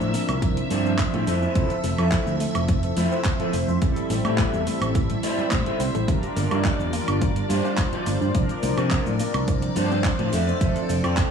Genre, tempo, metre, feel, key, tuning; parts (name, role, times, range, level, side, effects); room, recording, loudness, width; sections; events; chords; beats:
nu-disco, nu disco; 106 BPM; 4/4; straight; A4 = 442 Hz
mellow synth brass; accompaniment; 0.0-11.3 s; F3 to E5; -27 LUFS; right 1 dB; chorus, sidechain pumping, dub echo
string machine, full ensemble; sustained chords; 0.0-11.3 s; D5 to E5; -32 LUFS; equal; ensemble chorus, sidechain pumping
wide unison pluck; arpeggios; 0.0-11.2 s; E3 to D4; -32 LUFS; equal; sidechain pumping, digital delay
electric guitar at the edge of break-up; riff; 0.0-11.3 s; D4 to G5; -30 LUFS; equal; analog chorus, dub echo
fingered electric bass; bass; 0.0-11.2 s; F1 to C3; -25 LUFS; equal
pop drum kit; drums; 0.0-11.3 s; handclaps, hi-hat, shaker, woodblock; -32 LUFS; right 2 dB; small room ambience
electronic kick drum; drums; 0.4-11.3 s; -24 LUFS; equal; small room ambience
light reverb; studio ambience; -20 LUFS; side -7 dB against mid
0.0-11.3 A section
0.0 C9sus4; 1.3 Fmaj7; 3.8 Am7; 6.1 Gm7; 8.3 C9sus4; 10.3 Fmaj7
0.42 0.99 | 1.55 2.12 2.69 3.25 | 3.82 4.38 4.95 5.52 | 6.08 6.65 7.21 7.78 | 8.35 8.91 9.48 10.04 | 10.61 11.18